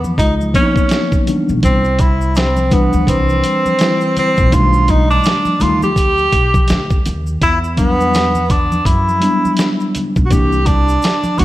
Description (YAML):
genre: hip hop, jazz-hop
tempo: 83 BPM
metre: 4/4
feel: swing 59% on 16ths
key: unclear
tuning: A4 = 441 Hz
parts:
  - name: upright bass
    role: bass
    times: 0.0-11.4 s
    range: A#1 to F#2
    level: -17 LUFS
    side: equal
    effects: none
  - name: congas and maracas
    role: percussion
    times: 0.0-11.4 s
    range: none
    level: -27 LUFS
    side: equal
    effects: none
  - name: warm tenor saxophone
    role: melody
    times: 0.2-11.4 s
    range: B3 to G4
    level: -16 LUFS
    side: right 1 dB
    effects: slapback echo
  - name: dusty soul sampler-style drum kit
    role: drums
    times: 0.2-11.4 s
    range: hi-hat, kick drum, snare drum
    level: -16 LUFS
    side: equal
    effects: none
  - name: tine electric piano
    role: accompaniment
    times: 0.5-11.4 s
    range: D#3 to B4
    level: -18 LUFS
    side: left 1 dB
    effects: medium stereo tremolo
room: light reverb, studio reverb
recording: vinyl crackle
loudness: -12 LUFS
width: side -15 dB against mid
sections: 0.0-11.4 A section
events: none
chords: 0.2 C#13; 1.6 Cmaj7; 4.5 B7alt; 7.4 Em7; 10.3 C9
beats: 0.18 0.91 | 1.63 2.35 3.08 3.80 | 4.52 5.25 5.97 6.69 | 7.41 8.14 8.86 9.58 | 10.30 11.03